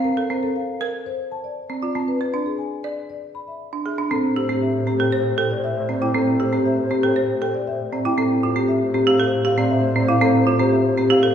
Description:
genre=classical, minimalist pattern music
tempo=118 BPM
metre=4/4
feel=straight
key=A minor from 4.1 s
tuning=A4 = 442 Hz
part: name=marimba with soft mallets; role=melody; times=0.0-11.3 s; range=G4 to B5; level=-23 LUFS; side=left 5 dB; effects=none
part: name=folk marimba with hard mallets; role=arpeggios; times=0.0-11.3 s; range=C4 to D5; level=-21 LUFS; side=right 3 dB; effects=none
part: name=alto flute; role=second line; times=4.1-11.3 s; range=C5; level=-29 LUFS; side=equal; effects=none
part: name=clear studio double bass section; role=bass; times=4.1-11.3 s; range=A2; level=-26 LUFS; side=right 2 dB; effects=none
room=wet recital hall reverb, RT60 1.5 s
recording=heard from further back in the room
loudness=-18 LUFS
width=side -8 dB against mid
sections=0.0-4.1 A section; 4.1-11.3 B section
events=none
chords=0.0 Bbmaj7(no3)/C; 2.1 E7(no3) (rootless); 4.1 Am7; 8.2 Dm7/A (rootless)

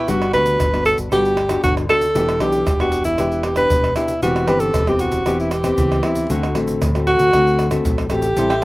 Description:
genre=samba and choro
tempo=116 BPM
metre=4/4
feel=straight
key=G major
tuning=A4 = 440 Hz
part: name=breathy alto saxophone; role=melody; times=0.0-8.6 s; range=E4 to B4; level=-18 LUFS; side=equal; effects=none
part: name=cavaquinho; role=accompaniment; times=0.0-0.1, 8.4-8.6 s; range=A4 to G5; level=-24 LUFS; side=right 1 dB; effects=none
part: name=nylon-string guitar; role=accompaniment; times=0.0-8.6 s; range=A2 to G4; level=-22 LUFS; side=left 2 dB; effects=none
part: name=deep dub fingered electric bass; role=bass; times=0.1-8.6 s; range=E1 to D2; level=-24 LUFS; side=equal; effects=none
part: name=egg shaker, surdo, pandeiro and tamborim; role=percussion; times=0.1-8.6 s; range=none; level=-24 LUFS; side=right 1 dB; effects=none
room=little or no reverb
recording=recorded outdoors, with no room sound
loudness=-15 LUFS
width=side -19 dB against mid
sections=0.1-8.6 A section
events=none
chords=0.1 Gmaj7; 2.2 Em7; 4.2 Cmaj7/E; 6.3 D7

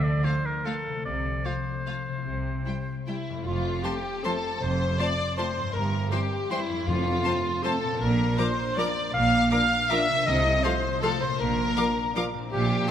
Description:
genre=classical, orchestral ballroom waltz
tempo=142-171 BPM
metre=3/4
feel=rubato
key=F major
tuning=A4 = 444 Hz
part: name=warm oboe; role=second line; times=0.0-3.1 s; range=A4 to D5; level=-32 LUFS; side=equal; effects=none
part: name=concert harp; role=arpeggios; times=0.0-12.9 s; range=F2 to A4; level=-35 LUFS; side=left 6 dB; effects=none
part: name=rich studio cello section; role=bass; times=0.0-12.8 s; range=F2 to D3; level=-31 LUFS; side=right 2 dB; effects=none
part: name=rich studio double bass section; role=bass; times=0.0-12.8 s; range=F1 to D2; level=-31 LUFS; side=right 3 dB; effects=none
part: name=clear studio violin section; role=second line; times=0.2-12.9 s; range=E4 to D6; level=-36 LUFS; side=left 2 dB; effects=none
part: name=rich studio violin section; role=melody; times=0.3-12.9 s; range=E4 to G5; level=-32 LUFS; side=left 3 dB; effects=none
part: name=warm studio viola section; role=accompaniment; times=0.3-12.2 s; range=E3 to C5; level=-36 LUFS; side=right 1 dB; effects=none
part: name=bright large flute ensemble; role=second line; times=3.1-12.9 s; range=E5 to F6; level=-33 LUFS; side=equal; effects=none
part: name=dark clarinet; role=second line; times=3.1-12.9 s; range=E4 to F5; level=-29 LUFS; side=left 1 dB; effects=none
part: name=mellow French horn section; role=sustained chords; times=3.8-12.3 s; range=G3 to F4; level=-37 LUFS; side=left 3 dB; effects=none
part: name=timpani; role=percussion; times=6.9-7.4, 10.3-10.8 s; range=F2 to C3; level=-35 LUFS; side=left 1 dB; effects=none
room=wet concert hall reverb, RT60 2.3 s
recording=none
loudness=-24 LUFS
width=side -9 dB against mid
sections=0.0-3.5 A section; 3.5-12.9 B section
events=none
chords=0.0 Dm; 1.1 F/C; 3.5 F; 5.7 C7/G; 6.9 F; 8.0 Bb; 10.3 F7/C; 11.4 Bb

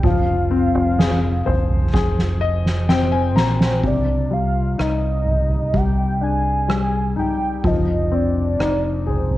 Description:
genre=pop ballad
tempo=63 BPM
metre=4/4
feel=straight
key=C minor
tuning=A4 = 440 Hz
part: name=warm velvety synth lead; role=melody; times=0.0-9.4 s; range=C5 to Ab5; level=-24 LUFS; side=right 2 dB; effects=chorus, tremolo, cassette tape
part: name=clear concert grand piano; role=accompaniment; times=0.0-9.4 s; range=C3 to Bb5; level=-22 LUFS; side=left 5 dB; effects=cassette tape
part: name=deep dub fingered electric bass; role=bass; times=0.0-9.4 s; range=F1 to C2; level=-22 LUFS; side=right 1 dB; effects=none
part: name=soft-mallet drum kit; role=drums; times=0.0-9.4 s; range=kick drum, rim click, snare drum, toms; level=-22 LUFS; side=right 1 dB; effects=cassette tape
room=light reverb, studio reverb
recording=home recording on cassette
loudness=-17 LUFS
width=side -15 dB against mid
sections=0.0-3.8 A section; 3.8-9.4 B section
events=drum fill 1.9-3.8; grand piano fill 1.9-3.8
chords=0.0 Fm; 3.8 Cmadd9; 7.6 Fm7

